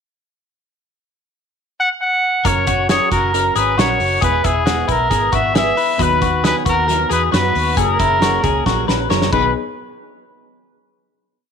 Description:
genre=jangly indie pop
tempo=135 BPM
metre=4/4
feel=straight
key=unclear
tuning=A4 = 439 Hz
part: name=clear trumpet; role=melody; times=1.8-9.5 s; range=G#4 to F#5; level=-18 LUFS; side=equal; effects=slapback echo
part: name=fingerpicked plugged-in steel-string acoustic guitar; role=accompaniment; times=2.4-9.5 s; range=B2 to B4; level=-24 LUFS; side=right 15 dB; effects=none
part: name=twelve-string electric guitar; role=arpeggios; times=2.4-9.5 s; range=E4 to C#5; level=-20 LUFS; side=left 11 dB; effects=slapback echo
part: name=vintage muted fingered electric bass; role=bass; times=2.5-9.5 s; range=E1 to F#2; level=-22 LUFS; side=right 1 dB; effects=none
part: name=loose indie drum kit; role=drums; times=2.5-9.4 s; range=crash cymbal, hi-hat, kick drum, snare drum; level=-21 LUFS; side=right 1 dB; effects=none
part: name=warbly lo-fi synth keys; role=accompaniment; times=6.0-9.6 s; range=A#3 to G#4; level=-27 LUFS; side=left 12 dB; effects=chorus
room=light reverb, small room ambience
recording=1960s-style stereo with parts hard left and right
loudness=-14 LUFS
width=side -6 dB against mid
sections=0.7-2.4 pickup bar; 2.4-9.5 bridge; 9.5-11.3 final hit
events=drum fill 8.7-9.5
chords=0.7 N.C.; 2.4 F#; 4.2 E; 6.0 B/D#; 7.8 F#add9; 9.3 B6; 9.5 N.C.

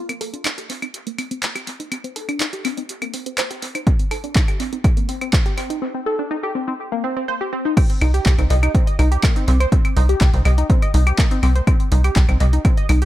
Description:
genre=melodic techno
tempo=123 BPM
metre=4/4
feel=straight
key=C dorian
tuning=A4 = 438 Hz
part: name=tight sequenced synth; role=arpeggios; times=0.0-13.1 s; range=Bb3 to Eb5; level=-24 LUFS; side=equal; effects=chorus, phaser, sidechain pumping, analog delay
part: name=punchy analog drum machine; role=drums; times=0.1-13.1 s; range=claves, crash cymbal, handclaps, hi-hat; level=-26 LUFS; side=equal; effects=dub echo
part: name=electronic kick drum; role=drums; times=3.9-12.7 s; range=none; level=-16 LUFS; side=equal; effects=none
part: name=tight sequencer bass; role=bass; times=8.0-13.1 s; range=C2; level=-15 LUFS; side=equal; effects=sidechain pumping
room=little or no reverb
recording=echo-heavy mix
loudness=-16 LUFS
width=side -14 dB against mid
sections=0.0-7.8 A section; 7.8-13.1 B section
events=build-up 0.0-7.8; filter sweep on synth arpeggio sound 0.0-7.8; break 5.8-7.8; drop 7.8-13.1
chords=0.0 Cm

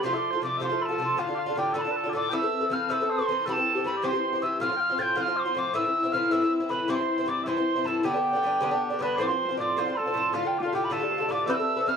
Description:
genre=celtic folk, Celtic jig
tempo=105 BPM (dotted quarters)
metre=6/8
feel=straight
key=unclear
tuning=A4 = 440 Hz
part: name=mellow hollow wooden whistle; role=melody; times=0.0-12.0 s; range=F5 to A6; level=-28 LUFS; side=right 1 dB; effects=none
part: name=mellow small bagpipes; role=second line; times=0.0-12.0 s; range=F4 to G5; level=-32 LUFS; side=left 1 dB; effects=none
part: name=Irish bouzouki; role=accompaniment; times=0.0-12.0 s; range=G2 to B4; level=-28 LUFS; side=left 1 dB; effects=none
part: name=Celtic harp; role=second line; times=9.0-12.0 s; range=F4 to F5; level=-32 LUFS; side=equal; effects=none
room=moderate studio reverb, RT60 0.7 s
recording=dark, warm production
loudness=-24 LUFS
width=side -6 dB against mid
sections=0.0-9.2 A section; 9.2-12.0 A section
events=none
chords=0.0 F; 1.2 Dm; 2.3 Amadd9; 3.5 C; 4.6 F; 5.8 Am; 6.9 C; 8.0 G; 9.2 F; 10.3 Dm

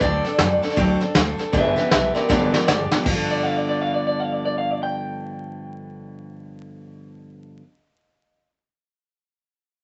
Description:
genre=rockabilly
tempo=157 BPM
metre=4/4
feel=swing 63% on 8ths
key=G mixolydian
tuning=A4 = 441 Hz
part: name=electric guitar through a small old amp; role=melody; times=0.0-7.6 s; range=Bb4 to G5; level=-26 LUFS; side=equal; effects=spring reverb
part: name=picked steel-string acoustic guitar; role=accompaniment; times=0.0-7.7 s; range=G2 to A4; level=-28 LUFS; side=equal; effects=none
part: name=upright bass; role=bass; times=0.0-7.6 s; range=G1 to F#2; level=-30 LUFS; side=equal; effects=none
part: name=vintage brush drum kit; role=drums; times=0.0-3.2 s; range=crash cymbal, hi-hat, kick drum, snare drum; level=-25 LUFS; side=equal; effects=none
room=wet studio ambience, RT60 0.4 s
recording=vinyl crackle, nothing above 8.0 kHz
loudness=-21 LUFS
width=mono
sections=0.0-3.1 A section; 3.1-6.1 B section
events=drum fill 2.3-3.1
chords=0.0 D7; 1.5 G7; 3.1 G9

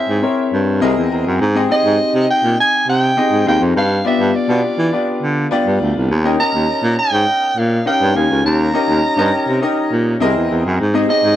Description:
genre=polished 1980s jazz-funk pop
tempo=102 BPM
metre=4/4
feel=straight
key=Ab major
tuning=A4 = 439 Hz
part: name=growling soprano saxophone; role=melody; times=0.0-11.4 s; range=D5 to Bb5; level=-17 LUFS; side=right 2 dB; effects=none
part: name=clear concert grand piano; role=accompaniment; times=0.0-11.4 s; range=B3 to Bb5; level=-18 LUFS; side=left 3 dB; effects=lush chorus
part: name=breathy baritone saxophone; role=bass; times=0.1-11.4 s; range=C2 to Fb3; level=-17 LUFS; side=right 1 dB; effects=none
room=light reverb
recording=dry, close 1970s-style studio recording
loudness=-13 LUFS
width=side -12 dB against mid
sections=0.0-11.4 A section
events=grand piano fill 0.5-1.4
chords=0.0 C7b9b13; 0.8 C7alt; 1.4 Abmaj7; 3.8 G7; 6.1 Eb7; 10.2 C7alt; 10.8 Abmaj7

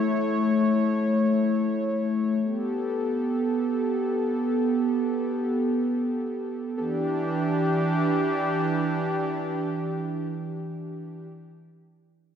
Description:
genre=IDM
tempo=free time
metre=none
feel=none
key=E dorian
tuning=A4 = 437 Hz
part: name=warm analog pad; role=sustained chords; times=0.0-11.3 s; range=E3 to C#5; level=-24 LUFS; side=equal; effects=chorus
part: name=concert harp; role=arpeggios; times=0.0-0.5 s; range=E4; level=-56 LUFS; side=equal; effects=none
room=moderate lush hall reverb, RT60 2.3 s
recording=none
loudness=-23 LUFS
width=side -8 dB against mid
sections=0.0-6.8 A section; 6.8-11.2 B section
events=filter sweep on analog synth pad 0.0-6.8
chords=0.0 A; 2.4 Gadd9; 6.8 Em7

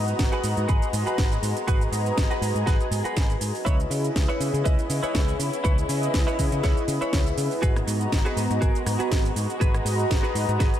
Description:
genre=nu-disco, nu disco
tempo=121 BPM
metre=4/4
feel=swing 55% on 16ths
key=G# minor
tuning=A4 = 444 Hz
part: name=warm analog pad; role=accompaniment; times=0.0-10.8 s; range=B3 to A#5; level=-29 LUFS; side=left 1 dB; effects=chorus, sidechain pumping, ping-pong delay
part: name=dark studio violin section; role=sustained chords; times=0.0-10.8 s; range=G#3 to G#4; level=-33 LUFS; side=left 2 dB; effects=sidechain pumping
part: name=picked electric bass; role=bass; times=0.0-10.7 s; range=G#1 to C#3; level=-27 LUFS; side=equal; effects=none
part: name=house drum kit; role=drums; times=0.1-10.8 s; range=hi-hat, rim click, shaker, snare drum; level=-32 LUFS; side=right 1 dB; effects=none
part: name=electronic kick drum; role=drums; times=0.2-10.7 s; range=none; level=-23 LUFS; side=equal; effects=none
part: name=direct-recorded clean electric guitar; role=riff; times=0.3-10.8 s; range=E4 to D#5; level=-32 LUFS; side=right 2 dB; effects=analog chorus, low-pass filter, ping-pong delay
room=light reverb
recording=none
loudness=-21 LUFS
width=side -11 dB against mid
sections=0.0-10.8 A section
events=clean electric guitar fill 10.6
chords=0.0 G#m7; 3.7 C#m7; 7.6 G#m7

